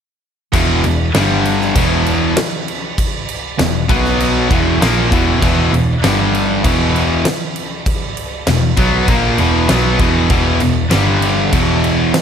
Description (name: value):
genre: hard rock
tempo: 98 BPM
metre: 4/4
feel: straight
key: unclear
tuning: A4 = 440 Hz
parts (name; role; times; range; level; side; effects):
- cranked stack guitar; riff; 0.5-12.1 s; E2 to B3; -18 LUFS; left 10 dB; overdrive, spring reverb
- high-gain distorted guitar; riff; 0.5-12.1 s; E2 to B3; -19 LUFS; equal; distortion
- sludgy distorted guitar; riff; 0.5-12.1 s; E2 to B3; -19 LUFS; right 10 dB; overdrive
- vintage muted picked electric bass; bass; 0.5-12.1 s; E1 to B1; -18 LUFS; equal; none
- huge arena drum kit; drums; 0.5-12.2 s; crash cymbal, kick drum, snare drum; -18 LUFS; equal; none
room: light reverb, small room ambience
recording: none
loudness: -12 LUFS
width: side -8 dB against mid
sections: 0.5-12.2 A section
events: none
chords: 0.5 E5; 1.1 G5; 1.8 E5; 3.9 B5; 4.5 E5; 6.0 G5; 6.6 E5; 10.9 G5; 11.5 E5